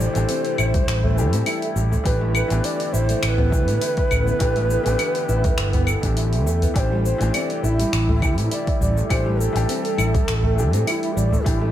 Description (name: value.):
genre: organic downtempo.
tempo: 102 BPM.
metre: 4/4.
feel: swing 54% on 16ths.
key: A minor.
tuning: A4 = 440 Hz.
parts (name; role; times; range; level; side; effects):
breathy low Native American-style wooden flute; melody; 0.0-11.7 s; E4 to D5; -26 LUFS; right 1 dB; digital delay.
felt-muted upright piano; accompaniment; 0.0-11.7 s; E3 to G4; -29 LUFS; left 4 dB; sidechain pumping, digital delay.
warbly tape-like pad; sustained chords; 0.0-11.7 s; B2 to A4; -31 LUFS; equal; chorus, built-in reverb, phaser, sidechain pumping.
fretless electric bass; bass; 0.0-11.7 s; G1 to A2; -21 LUFS; equal; tube saturation, sidechain pumping.
deep house drum kit; drums; 0.0-11.6 s; claves, finger snaps, hi-hat, shaker; -28 LUFS; left 1 dB; none.
nylon-string guitar; arpeggios; 0.2-11.7 s; G3 to E4; -29 LUFS; right 2 dB; digital delay.
electronic kick drum; drums; 0.7-11.6 s; none; -23 LUFS; equal; none.
udu; percussion; 0.7-11.4 s; none; -25 LUFS; equal; none.
room: moderate echo chamber reverb, RT60 1.7 s, small room ambience.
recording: dark, warm production.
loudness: -18 LUFS.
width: side -11 dB against mid.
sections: 0.0-11.7 A section.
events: none.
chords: 0.0 Am7; 2.1 E7sus4/A; 6.8 Am7.